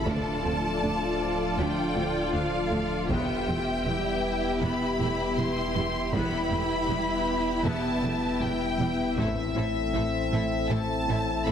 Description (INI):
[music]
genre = cinematic, hybrid orchestral and electronic film score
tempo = 79 BPM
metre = 4/4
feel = straight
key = E phrygian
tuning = A4 = 440 Hz
[part]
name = clear symphonic violin section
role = melody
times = 0.0-11.5 s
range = E5 to C6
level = -32 LUFS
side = left 1 dB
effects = none
[part]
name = rich symphonic violin section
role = second line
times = 0.0-11.5 s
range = G4 to E5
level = -35 LUFS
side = equal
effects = none
[part]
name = rich studio viola section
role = accompaniment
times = 0.0-11.5 s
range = G3 to F4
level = -34 LUFS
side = equal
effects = none
[part]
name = mellow French horn section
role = sustained chords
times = 0.0-11.5 s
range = A3 to G4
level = -33 LUFS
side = left 5 dB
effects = none
[part]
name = warm analog pad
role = sustained chords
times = 0.0-11.5 s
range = F3 to E5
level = -33 LUFS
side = right 1 dB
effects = chorus
[part]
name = warm sub bass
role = bass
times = 0.0-11.5 s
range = D1 to A1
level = -37 LUFS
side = equal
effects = none
[part]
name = rich symphonic cello section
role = bass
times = 0.1-11.5 s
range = D2 to A2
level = -34 LUFS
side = right 1 dB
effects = none
[part]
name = warm symphonic double bass section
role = bass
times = 0.1-11.5 s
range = E1 to D2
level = -34 LUFS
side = right 3 dB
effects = none
[part]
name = taiko ensemble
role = drums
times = 0.1-9.9 s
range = none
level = -36 LUFS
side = equal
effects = none
[sound]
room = wet scoring stage reverb, RT60 1.8 s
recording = heavily compressed radio sound, multiband compression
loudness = -25 LUFS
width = side -8 dB against mid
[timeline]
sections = 0.0-11.5 A section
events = none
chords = 0.1 Dm; 3.1 Em; 9.2 Am